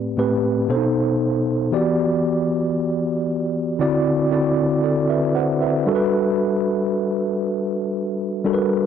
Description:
R&B; 58 BPM; 4/4; straight; G major; A4 = 440 Hz
mellow tine electric piano; solo; 0.0-8.9 s; A2 to F#5; -18 LUFS; equal; medium stereo tremolo
light reverb, digital ambience; dry, gritty hardware recording, transformer saturation; -18 LUFS; side -8 dB against mid
0.0-5.9 A section; 5.9-8.9 B section
0.0 Am9; 0.7 B7b9; 1.7 Em9; 3.8 D9; 5.9 Gmaj9

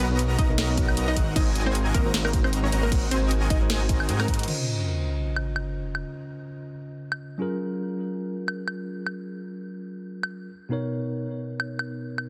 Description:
future bass; 154 BPM; 4/4; swing 56% on 16ths, half-time; Db major; A4 = 444 Hz
unison pluck; melody; 0.0-4.4 s; Bb3 to Bb5; -34 LUFS; equal; sidechain pumping, dub echo
dense compressed supersaw; riff; 0.0-4.5 s; Cb4 to Bb5; -35 LUFS; equal; sidechain pumping, low-pass filter, digital delay
detuned saw bass; bass; 0.0-4.5 s; Ab1 to Ab2; -28 LUFS; equal; chorus, sidechain pumping
trap drum kit; drums; 0.0-12.3 s; crash cymbal, hi-hat, snare drum, woodblock; -32 LUFS; equal
mellow tine electric piano; accompaniment; 0.1-12.3 s; Cb3 to Eb5; -34 LUFS; equal; sidechain pumping, digital delay
electronic kick drum; drums; 0.4-4.4 s; -27 LUFS; equal
sub drop; sound effects; 4.5-6.0 s; -31 LUFS; equal
digital ambience; dense, heavily limited modern master; -26 LUFS; mono
0.0-4.5 A section; 4.5-12.3 B section
drop 0.0-4.5; drum fill 4.3; impact 4.5-6.0
0.0 Cbmaj7; 1.2 Ab9; 4.5 Dbmaj7; 7.4 Gbmaj7; 10.7 Cbmaj7

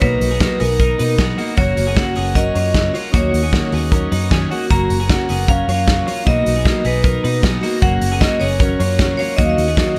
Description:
jangly indie pop; 154 BPM; 4/4; straight; F# major; A4 = 440 Hz
vibraphone with medium hard mallets; melody; 0.0-10.0 s; A#4 to A#5; -23 LUFS; equal
overdriven combo organ; accompaniment; 0.0-10.0 s; B3 to A#5; -29 LUFS; equal
picked steel-string acoustic guitar; accompaniment; 0.0-10.0 s; F#2 to F#4; -28 LUFS; equal
twelve-string electric guitar; arpeggios; 0.0-10.0 s; A#3 to C#5; -25 LUFS; equal
vintage muted fingered electric bass; bass; 0.0-10.0 s; F#1 to B2; -22 LUFS; equal
loose indie drum kit; drums; 0.0-10.0 s; hi-hat, kick drum, snare drum; -21 LUFS; equal
studio reverb; -16 LUFS; mono
0.0-10.0 A section
transistor combo organ fill 3.9-4.7
0.0 Bmaj7; 1.6 F#; 3.1 D#m7; 4.7 F#; 6.3 Bmaj7; 7.8 F#; 9.4 D#m7

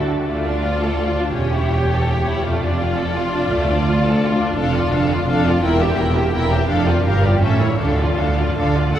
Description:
quick classical-period movement for string orchestra; 168 BPM; 3/4; rubato; D minor; A4 = 440 Hz
rich studio violin section; second line; 0.0-9.0 s; A3 to F#5; -24 LUFS; left 1 dB
warm studio viola section; accompaniment; 0.0-9.0 s; A3 to G4; -23 LUFS; right 1 dB
warm studio cello section; bass; 0.0-9.0 s; D2 to A4; -22 LUFS; right 1 dB
warm studio double bass section; bass; 0.0-9.0 s; E1 to D2; -21 LUFS; right 1 dB
warm studio violin section; melody; 0.3-9.0 s; C#5 to G5; -25 LUFS; left 3 dB
wet cathedral reverb, RT60 6.2 s; recorded in a church or concert hall; -16 LUFS; side -10 dB against mid
0.3-8.9 A section
0.3 Dm; 1.4 A7/E (rootless); 2.4 Dm/F; 3.5 Dm; 4.6 Dm/F; 5.6 Edim; 6.7 Dm/F; 7.1 Gm7; 7.4 A; 7.8 Dm

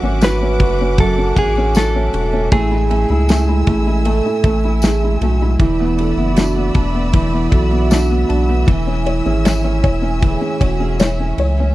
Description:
pop ballad; 78 BPM; 4/4; straight; A major; A4 = 437 Hz
dark French horn section; second line; 0.0-11.5 s; E4 to A4; -23 LUFS; right 5 dB
felt-muted upright piano; accompaniment; 0.0-11.7 s; E3 to C#5; -21 LUFS; left 3 dB
clear studio string section; sustained chords; 0.0-11.7 s; D5 to E6; -27 LUFS; equal
nylon-string guitar; arpeggios; 0.0-11.7 s; E2 to G#4; -26 LUFS; right 8 dB
saturated sub bass; bass; 0.0-11.7 s; E1 to C#2; -18 LUFS; equal
direct-recorded clean electric guitar; melody; 0.2-4.0 s; G#4 to B4; -20 LUFS; equal
modern studio drum kit; drums; 0.2-11.6 s; kick drum, ride cymbal, snare drum; -15 LUFS; equal
tambourine; percussion; 0.2-11.2 s; -31 LUFS; left 5 dB
little or no reverb; dry, close 1970s-style studio recording; -13 LUFS; side -16 dB against mid
0.0-11.7 A section
0.0 Dmaj7/F#; 2.5 Amaj7; 5.6 E7sus4; 8.7 Amaj7/E

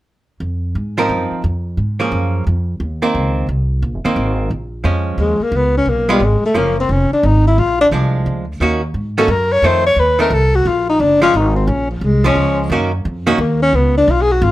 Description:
jazz, small-group swing and bop; 176 BPM; 3/4; swing 65% on 8ths; Bb minor; A4 = 440 Hz
upright bass; bass; 0.4-14.5 s; Eb1 to Ab2; -17 LUFS; equal
archtop guitar, miked and amplified; accompaniment; 1.0-13.4 s; Eb3 to Bb4; -18 LUFS; right 2 dB
breathy tenor saxophone; melody; 5.2-14.5 s; F3 to Db5; -14 LUFS; left 2 dB; plate reverb
light reverb; -13 LUFS; side -15 dB against mid
0.4-4.5 A section; 4.5-12.7 B section; 12.7-14.5 C section
0.4 F7sus4; 1.4 Bbm7/F; 2.5 F7sus4; 4.5 Bbm7; 5.5 Db7(no3); 6.6 Gbmaj7; 7.6 Bb7; 8.6 Ebm7; 9.6 F7; 10.7 Bbm7; 12.7 Ebm7; 13.7 Db7

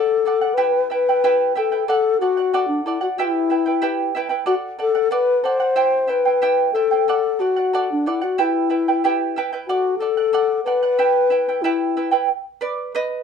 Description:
andean folk, Andean ensemble; 92 BPM; 2/4; straight; E minor; A4 = 440 Hz
reedy wooden-headed alto flute; melody; 0.0-12.1 s; D4 to C5; -18 LUFS; left 4 dB
charango; accompaniment; 0.0-13.2 s; E4 to G5; -22 LUFS; right 6 dB
moderate studio reverb, RT60 0.5 s; dark, warm production; -17 LUFS; side -6 dB against mid
0.0-1.9 A section; 1.9-12.3 A section
0.0 D; 0.6 Em; 1.9 D; 3.2 Em; 4.5 D; 5.8 C; 7.1 D; 8.4 Em; 9.7 D; 11.0 Em; 12.3 N.C.

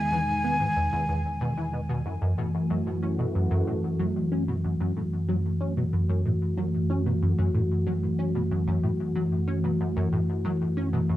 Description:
ambient, sequencer-driven space music; 93 BPM; 4/4; straight; F# minor; A4 = 440 Hz
breathy mellow silver concert flute; melody; 0.0-1.7 s; G#5; -28 LUFS; left 1 dB; cassette tape, plate reverb, ping-pong delay
sweeping resonant pad; sustained chords; 0.0-11.2 s; E2 to F#4; -26 LUFS; equal; chorus
plucky analog bass; riff; 0.1-11.2 s; E2 to C#4; -29 LUFS; equal; ensemble chorus, ping-pong delay
wet studio reverb, RT60 0.7 s; home recording on cassette; -24 LUFS; side -14 dB against mid
0.0-2.1 A section; 2.1-11.2 B section
0.0 Emaj7; 2.1 F#m7

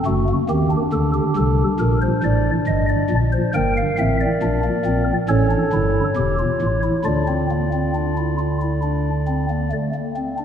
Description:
classical, baroque-style 4-part fugue for pipe organ; 69 BPM; 4/4; straight; G minor, D minor from 3.5 s; A4 = 440 Hz
chamber organ, stopped flute; solo; 0.0-10.4 s; E1 to G5; -17 LUFS; equal
wet church reverb, RT60 3.2 s; -17 LUFS; side -8 dB against mid
0.0-10.4 A section
0.1 D/F#; 1.8 Gm; 3.5 Em7b5/G (rootless); 5.3 A7; 7.0 Dm

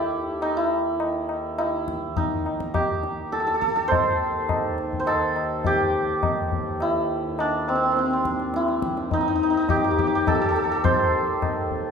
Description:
indian classical, Hindustani; 104 BPM; 3/4; straight; Eb raga marwa; A4 = 441 Hz
santur; melody; 0.0-11.9 s; C4 to C5; -22 LUFS; equal
pedal harmonium; drone; 0.0-11.9 s; Eb2 to Eb3; -33 LUFS; left 1 dB
tabla; percussion; 0.4-11.9 s; -28 LUFS; left 2 dB
wet recital hall reverb, RT60 1.3 s; minimal, uncompressed stereo recording; -21 LUFS; side -6 dB against mid
0.0-3.9 A section; 3.9-11.9 B section

